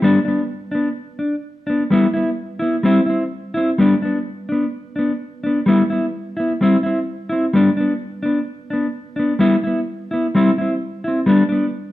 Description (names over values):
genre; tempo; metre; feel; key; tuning
highlife; 128 BPM; 4/4; straight; G major; A4 = 440 Hz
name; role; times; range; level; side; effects
mellow electric guitar; solo; 0.0-11.7 s; G3 to E4; -16 LUFS; left 1 dB; none
room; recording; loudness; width
wet large studio reverb, RT60 1.3 s; band playing live in one room; -16 LUFS; side -15 dB against mid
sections
0.0-11.9 A section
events
none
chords
0.0 G (rootless); 1.9 Em; 2.9 C; 3.8 G (rootless); 5.7 Em; 6.6 C; 7.5 G (rootless); 9.4 Em; 10.4 C; 11.3 G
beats
| 0.04 0.51 0.98 1.45 | 1.92 2.39 2.86 3.33 | 3.80 4.26 4.73 5.20 | 5.67 6.14 6.61 7.08 | 7.55 8.02 8.48 8.95 | 9.42 9.89 10.35 10.82 | 11.29